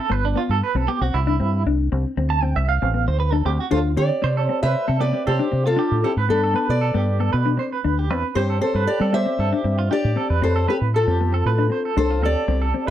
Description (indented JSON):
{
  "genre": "highlife",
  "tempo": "116 BPM",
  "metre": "4/4",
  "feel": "straight",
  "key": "C major",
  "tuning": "A4 = 443 Hz",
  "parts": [
    { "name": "mellow electric guitar", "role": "accompaniment", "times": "0.0-12.9 s", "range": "B3 to D4", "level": "-26 LUFS", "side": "left 6 dB", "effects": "spring reverb" },
    { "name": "clean electric guitar", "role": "arpeggios", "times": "0.0-12.9 s", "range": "D4 to A5", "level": "-26 LUFS", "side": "right 9 dB", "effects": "tremolo, slapback echo" },
    { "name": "deep dub fingered electric bass", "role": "bass", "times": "0.1-12.9 s", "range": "G1 to G3", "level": "-21 LUFS", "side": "equal", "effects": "none" },
    { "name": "fingerpicked old ladder-braced acoustic guitar", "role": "melody", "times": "3.7-12.9 s", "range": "D4 to E5", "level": "-22 LUFS", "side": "left 1 dB", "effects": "none" }
  ],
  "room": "little or no reverb",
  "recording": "dry, close 1970s-style studio recording",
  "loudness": "-18 LUFS",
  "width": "side -11 dB against mid",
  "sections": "0.0-4.2 A section; 4.2-12.9 B section",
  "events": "clean electric guitar solo 0.0-4.2",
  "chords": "0.1 G; 1.1 Cadd9; 2.2 D5; 4.2 Csus2; 6.3 Gadd9; 8.4 Csus2/G; 10.4 F",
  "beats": "| 0.11 0.63 1.14 1.66 | 2.17 2.69 3.20 3.72 | 4.23 4.75 5.26 5.78 | 6.30 6.81 7.33 7.84 | 8.36 8.88 9.39 9.91 | 10.42 10.94 11.45 11.97 | 12.48"
}